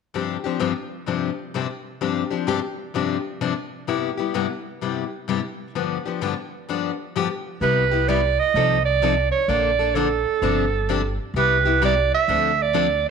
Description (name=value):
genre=acoustic string swing (jazz manouche)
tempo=128 BPM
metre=4/4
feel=swing 65% on 8ths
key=unclear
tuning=A4 = 438 Hz
part: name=picked plugged-in steel-string acoustic guitar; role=accompaniment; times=0.1-12.9 s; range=G2 to A4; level=-24 LUFS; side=left 9 dB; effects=none
part: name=bright clarinet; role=melody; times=7.6-13.1 s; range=A4 to E5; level=-19 LUFS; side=right 9 dB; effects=none
part: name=upright bass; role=bass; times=7.6-13.0 s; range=G1 to D2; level=-25 LUFS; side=equal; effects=none
room=wet echo chamber reverb, RT60 1.6 s, small room ambience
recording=1960s-style stereo with parts hard left and right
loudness=-20 LUFS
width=side -6 dB against mid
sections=0.1-7.6 A section; 7.6-13.1 B section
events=none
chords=0.1 G7sus4; 3.9 Cmaj7/G; 5.7 G7; 7.6 Cmaj7; 8.5 F7/C; 9.5 Bbmaj7; 10.4 G7sus4; 11.4 Cmaj7; 12.3 Dm7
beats=| 0.14 0.60 1.07 1.54 | 2.01 2.47 2.94 3.41 | 3.87 4.34 4.81 5.28 | 5.74 6.21 6.68 7.14 | 7.61 8.08 8.55 9.02 | 9.48 9.95 10.42 10.88 | 11.35 11.82 12.29 12.76